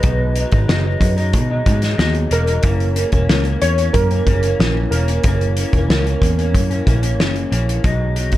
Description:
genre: indie pop, bedroom pop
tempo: 92 BPM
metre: 4/4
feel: straight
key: B major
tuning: A4 = 440 Hz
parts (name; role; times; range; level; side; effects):
- warbly lo-fi synth keys; melody; 0.0-7.1 s; A#4 to C#5; -23 LUFS; right 1 dB; lush chorus, slapback echo
- electric guitar through a small old amp; accompaniment; 0.0-8.4 s; F#2 to D#4; -23 LUFS; left 1 dB; analog chorus, vibrato effect
- vintage muted picked electric bass; bass; 0.0-8.4 s; E1 to B2; -18 LUFS; equal; none
- loose indie drum kit; drums; 0.0-8.4 s; hi-hat, kick drum, snare drum; -19 LUFS; equal; none
room: little or no reverb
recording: dark, warm production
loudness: -14 LUFS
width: side -14 dB against mid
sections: 0.0-7.8 A section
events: none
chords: 0.0 B6; 2.6 F#7; 7.8 B6

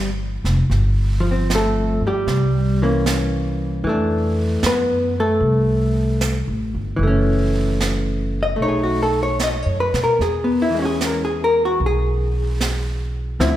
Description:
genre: jazz ballad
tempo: 76 BPM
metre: 4/4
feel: swing 67% on 8ths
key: unclear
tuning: A4 = 438 Hz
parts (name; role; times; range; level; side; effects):
- hollow-body jazz guitar; accompaniment; 0.0-13.6 s; D3 to Eb5; -20 LUFS; left 1 dB; none
- upright bass; bass; 0.0-13.6 s; F1 to B2; -21 LUFS; equal; none
- jazz brush drum kit; drums; 0.5-13.6 s; brushed snare drum, hi-hat, snare drum; -28 LUFS; right 3 dB; none
room: moderate concert hall reverb, RT60 2.3 s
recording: recorded in a church or concert hall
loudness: -17 LUFS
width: side -13 dB against mid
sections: 0.0-13.6 A section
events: none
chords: 0.0 Cadd9 (rootless); 0.7 G9sus4; 2.3 C7b9; 3.8 Fmaj13; 7.0 F#m7; 8.6 B; 10.2 E6

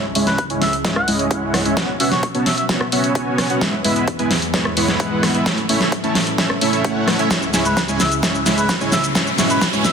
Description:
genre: EDM, festival progressive house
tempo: 130 BPM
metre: 4/4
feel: straight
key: C# minor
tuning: A4 = 441 Hz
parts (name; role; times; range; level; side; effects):
- lush unison pad; sustained chords; 0.0-9.9 s; C#2 to F#5; -28 LUFS; equal; chorus, sidechain pumping
- dense compressed supersaw; riff; 0.0-9.9 s; G#3 to A5; -19 LUFS; right 1 dB; sidechain pumping, low-pass filter, digital delay
- big-room dance drum kit; drums; 0.2-9.9 s; hi-hat, rim click, shaker, snare drum; -20 LUFS; equal; none
- trumpet with cup mute; melody; 0.3-2.6, 7.7-9.9 s; B4 to F#5; -24 LUFS; equal; digital delay
- electronic kick drum; drums; 0.4-9.7 s; none; -24 LUFS; equal; high-pass filter on kick
- riser; sound effects; 8.2-9.9 s; none; -30 LUFS; right 1 dB; none
room: moderate huge ambient reverb, RT60 6.1 s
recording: dense, heavily limited modern master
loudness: -15 LUFS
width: side -6 dB against mid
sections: 0.0-9.9 A section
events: build-up 0.0-9.9; drum fill 0.0-9.9; filter sweep on supersaw synth 0.0-9.9; filter sweep on analog synth pad 0.0-9.9; riser 8.2-9.9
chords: 0.0 C#m; 1.8 Bsus2; 3.6 E; 5.5 A; 7.3 C#m; 9.2 Bsus2

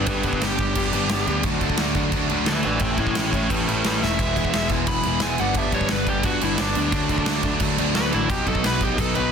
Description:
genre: punk rock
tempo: 175 BPM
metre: 4/4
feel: straight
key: unclear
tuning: A4 = 440 Hz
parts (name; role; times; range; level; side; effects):
- dark smooth lead guitar; melody; 0.0-9.3 s; D4 to B5; -26 LUFS; equal; overdrive
- crunchy overdriven guitar; riff; 0.0-9.3 s; G2 to E4; -30 LUFS; right 1 dB; none
- distorted electric guitar; riff; 0.0-9.3 s; G2 to E4; -28 LUFS; right 13 dB; distortion
- overdriven electric guitar; riff; 0.0-9.3 s; G2 to G4; -27 LUFS; left 12 dB; none
- growling picked electric bass; bass; 0.0-9.3 s; E1 to D2; -28 LUFS; equal; overdrive
- big rock drum kit; drums; 0.1-9.2 s; crash cymbal, kick drum, snare drum; -25 LUFS; right 1 dB; none
room: light reverb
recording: dense, heavily limited modern master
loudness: -19 LUFS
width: side -7 dB against mid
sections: 0.0-9.3 A section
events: lead electric guitar solo 0.0-9.3; drum fill 4.0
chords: 0.0 G; 1.4 D; 2.8 A; 4.2 E; 5.4 G; 6.9 D; 8.3 B

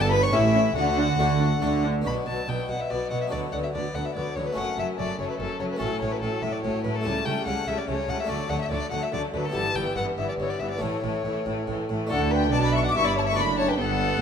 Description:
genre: classical, baroque-style concerto movement with solo episodes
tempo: 143 BPM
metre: 3/4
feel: straight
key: B minor, D major from 7.1 s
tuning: A4 = 439 Hz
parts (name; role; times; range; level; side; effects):
- dark studio violin section; melody; 0.0-14.2 s; C#4 to D6; -36 LUFS; left 6 dB; none
- rich violin; melody; 0.0-14.2 s; A4 to C#6; -29 LUFS; left 5 dB; none
- rich chamber violin section; second line; 0.0-14.2 s; A3 to D6; -31 LUFS; left 3 dB; none
- harpsichord; accompaniment; 0.0-14.2 s; F#2 to G4; -31 LUFS; left 1 dB; none
- warm chamber cello section; bass; 0.0-14.2 s; F#2 to D3; -31 LUFS; right 4 dB; none
- warm chamber double bass section; bass; 0.0-14.2 s; F#1 to D2; -30 LUFS; right 3 dB; none
- rich chamber viola section; accompaniment; 0.1-14.2 s; E3 to E4; -33 LUFS; right 2 dB; none
room: wet recital hall reverb, RT60 1.7 s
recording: none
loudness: -23 LUFS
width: side -7 dB against mid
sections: 0.0-2.1 A section; 2.1-12.1 B section; 12.1-14.2 A section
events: none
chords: 0.3 A7; 0.8 D; 2.1 Bm; 3.3 Bm/D; 4.6 F#m; 5.8 F#m/A; 7.1 A7/C#; 8.3 D; 9.5 Em/G; 10.8 A; 12.1 D; 13.4 D/F#

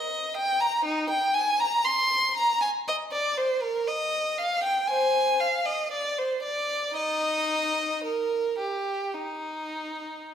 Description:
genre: classical, baroque-style suite movement for unaccompanied violin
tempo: 55-62 BPM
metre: 4/4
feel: rubato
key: Eb major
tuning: A4 = 441 Hz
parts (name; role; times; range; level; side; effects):
- rich violin; solo; 0.0-10.3 s; Eb4 to C6; -24 LUFS; equal; none
room: wet recital hall reverb, RT60 1.6 s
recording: recorded in a church or concert hall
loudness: -24 LUFS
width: side -8 dB against mid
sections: 0.0-10.3 A section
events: none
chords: none

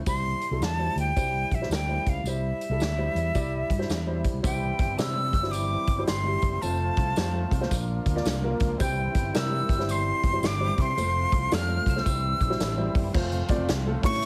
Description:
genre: uptempo 1960s-style soul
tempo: 110 BPM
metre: 4/4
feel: swing 64% on 8ths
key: unclear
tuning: A4 = 441 Hz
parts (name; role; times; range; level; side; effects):
- breathy bright jazz flute; melody; 0.1-14.3 s; E5 to F6; -32 LUFS; equal; none
- warm upright piano; accompaniment; 0.1-14.3 s; G3 to D5; -35 LUFS; equal; none
- mellow fretless electric bass; bass; 0.1-14.3 s; F1 to C3; -32 LUFS; equal; none
- swinging big-band drum kit; drums; 0.1-14.3 s; crash cymbal, hi-hat, kick drum, snare drum; -31 LUFS; equal; none
- tambourine; percussion; 0.1-12.8 s; none; -46 LUFS; equal; none
- overdriven tonewheel organ; sustained chords; 4.4-14.3 s; E3 to F4; -39 LUFS; equal; none
- glockenspiel with rubber mallets; second line; 8.8-14.3 s; G6 to F7; -43 LUFS; equal; none
room: light reverb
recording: heavily compressed radio sound, multiband compression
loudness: -26 LUFS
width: mono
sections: 0.0-4.4 A section; 4.4-13.1 B section; 13.1-14.3 C section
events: none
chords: 0.1 C; 6.6 F; 7.7 Bb; 8.8 C; 11.0 F; 12.1 C; 13.1 F

